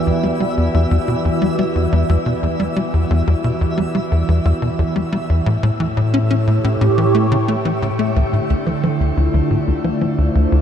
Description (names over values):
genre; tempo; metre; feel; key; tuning
ambient, sequencer-driven space music; 89 BPM; 4/4; straight; E minor; A4 = 440 Hz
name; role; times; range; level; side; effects
phased analog pad; sustained chords; 0.0-10.6 s; A2 to D5; -19 LUFS; equal; phaser, chorus
twinkling granular texture; texture; 0.0-8.2 s; E5; -29 LUFS; right 1 dB; built-in reverb
tight sequencer bass; riff; 0.1-10.6 s; D2 to C#4; -17 LUFS; left 1 dB; analog chorus, ping-pong delay
room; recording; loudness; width
moderate shimmer reverb, RT60 7.3 s; none; -15 LUFS; side -8 dB against mid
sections
0.0-8.2 A section; 8.2-10.6 B section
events
none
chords
0.0 Em7; 5.5 A7; 8.2 Dm7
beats
| 0.07 0.74 1.42 2.09 | 2.77 3.44 4.11 4.79 | 5.46 6.14 6.81 7.48 | 8.16 8.83 9.51 10.18